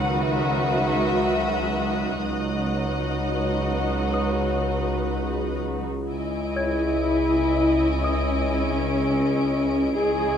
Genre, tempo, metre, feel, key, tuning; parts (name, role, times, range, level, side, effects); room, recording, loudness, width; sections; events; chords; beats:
cinematic, suspense film score; 62 BPM; 4/4; straight; C# minor; A4 = 436 Hz
muted studio violin section; melody; 0.0-10.4 s; D#5 to G#5; -33 LUFS; left 2 dB
muted studio violin section; second line; 0.0-10.4 s; F#4 to D#5; -29 LUFS; left 2 dB
muted studio viola section; accompaniment; 0.0-10.4 s; D#3 to E4; -30 LUFS; right 1 dB
muted chamber cello section; bass; 0.0-10.4 s; C#2 to G#4; -27 LUFS; right 1 dB
muted studio double bass section; bass; 0.0-10.4 s; C#2; -30 LUFS; right 2 dB
overtone-sweeping drone; drone; 0.0-10.4 s; C#2; -29 LUFS; left 1 dB; chorus, built-in reverb
music box; texture; 0.0-10.4 s; C#5 to G#6; -33 LUFS; left 3 dB
muted studio violin section; texture; 0.0-10.4 s; C#5 to D7; -36 LUFS; left 3 dB
dark French horn section; sustained chords; 6.6-10.4 s; C#4 to G#4; -27 LUFS; left 3 dB
moderate scoring stage reverb, RT60 2.1 s; -21 LUFS; side -8 dB against mid
0.0-6.1 A section; 6.1-10.4 B section
0.0 B/C#; 6.1 C#madd9
0.28 1.25 | 2.22 3.19 4.15 5.12 | 6.09 7.06 8.03 8.99 | 9.96